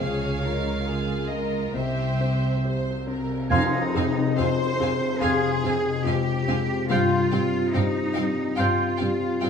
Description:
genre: cinematic, emotional film score for orchestra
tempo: 67-72 BPM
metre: 4/4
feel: rubato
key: F minor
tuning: A4 = 440 Hz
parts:
  - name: rich chamber violin section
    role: melody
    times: 0.0-9.5 s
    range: Eb5 to Ab5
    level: -36 LUFS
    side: right 2 dB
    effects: none
  - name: clear symphonic violin section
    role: second line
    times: 0.0-9.5 s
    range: F4 to F5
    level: -36 LUFS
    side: equal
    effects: none
  - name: felt-muted upright piano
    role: accompaniment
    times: 0.0-9.5 s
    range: C2 to C5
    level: -28 LUFS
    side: left 2 dB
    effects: none
  - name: rich symphonic viola section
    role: accompaniment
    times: 0.0-9.5 s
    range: C4 to C5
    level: -35 LUFS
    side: right 1 dB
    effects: none
  - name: concert harp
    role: arpeggios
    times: 0.0-9.5 s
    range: F2 to C5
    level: -29 LUFS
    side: left 8 dB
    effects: none
  - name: clear symphonic cello section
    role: bass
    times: 0.0-9.5 s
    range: C2 to C5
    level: -28 LUFS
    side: right 1 dB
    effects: none
  - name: clear symphonic double bass section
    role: bass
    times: 0.0-9.5 s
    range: C2 to G2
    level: -29 LUFS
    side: right 5 dB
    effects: none
  - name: cymbal swell and tam-tam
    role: percussion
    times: 0.0-6.9 s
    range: none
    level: -34 LUFS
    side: left 2 dB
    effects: none
  - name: mellow large flute ensemble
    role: second line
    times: 3.5-9.0 s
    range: C6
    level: -31 LUFS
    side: equal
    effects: none
  - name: warm clarinet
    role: second line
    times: 3.5-8.9 s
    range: F5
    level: -31 LUFS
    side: left 2 dB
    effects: none
  - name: warm oboe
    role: second line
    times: 3.5-8.9 s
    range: G5 to Ab5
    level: -32 LUFS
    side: right 1 dB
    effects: none
room: moderate scoring stage reverb, RT60 1.9 s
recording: close, detailed microphones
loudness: -22 LUFS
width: side -6 dB against mid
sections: 0.0-3.5 A section; 3.5-9.5 A section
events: band accent 3.5-4.4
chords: 0.0 Db6; 1.7 C; 3.5 Fm7; 6.9 Csus4/G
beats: | 0.01 0.87 1.75 2.63 | 3.50 4.38 5.22 6.05 | 6.90 7.74 8.58 9.42

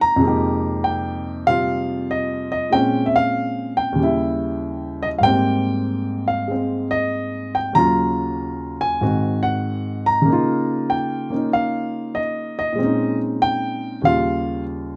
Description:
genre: solo jazz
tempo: 96 BPM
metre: 4/4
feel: swing 67% on 8ths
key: Ab major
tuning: A4 = 440 Hz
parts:
  - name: warm grand piano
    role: solo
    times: 0.0-15.0 s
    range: Eb2 to Bb5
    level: -21 LUFS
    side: equal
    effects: none
room: light reverb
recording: close, detailed microphones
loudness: -21 LUFS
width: mono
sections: 0.0-15.0 A section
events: none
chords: 0.2 Fm11; 2.7 Bbm9; 4.0 Eb7b9; 5.2 Abmaj9; 7.8 Ebm9; 9.0 Ab7; 10.3 Db69; 12.8 Bbm11; 14.0 Eb9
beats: | 0.21 0.84 1.47 2.10 | 2.72 3.35 3.98 4.61 | 5.24 5.87 6.49 7.12 | 7.75 8.38 9.01 9.64 | 10.27 10.89 11.52 12.15 | 12.78 13.41 14.04 14.66

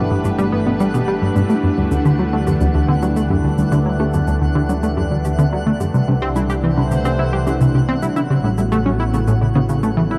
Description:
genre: ambient, sequencer-driven space music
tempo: 108 BPM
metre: 4/4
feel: straight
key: unclear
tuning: A4 = 440 Hz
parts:
  - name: phased analog pad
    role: sustained chords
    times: 0.0-10.2 s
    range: E3 to C#5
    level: -25 LUFS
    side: equal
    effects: phaser, chorus
  - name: warbly dusty pluck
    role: arpeggios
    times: 0.0-10.2 s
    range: C#3 to G4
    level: -28 LUFS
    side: equal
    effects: chorus, tape echo
  - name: tight sequenced synth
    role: riff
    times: 0.0-10.2 s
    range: D2 to G4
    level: -20 LUFS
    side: equal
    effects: chorus, tape echo
  - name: fat analog bass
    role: bass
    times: 0.0-10.2 s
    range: G1 to D2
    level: -24 LUFS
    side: equal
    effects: none
  - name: twinkling granular texture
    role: texture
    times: 0.0-10.2 s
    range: F#5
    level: -33 LUFS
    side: equal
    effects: built-in reverb
  - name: congas and shaker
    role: percussion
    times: 0.2-9.9 s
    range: none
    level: -31 LUFS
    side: equal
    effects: tape echo
room: moderate lush hall reverb, RT60 2.8 s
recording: dark, warm production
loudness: -17 LUFS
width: mono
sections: 0.0-10.2 A section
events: none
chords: 0.0 Gmaj7; 1.5 Dsus4; 5.9 C6; 8.2 A7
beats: 0.39 0.94 | 1.50 2.05 2.61 3.17 | 3.72 4.28 4.83 5.39 | 5.94 6.50 7.05 7.61 | 8.16 8.72 9.28 9.83

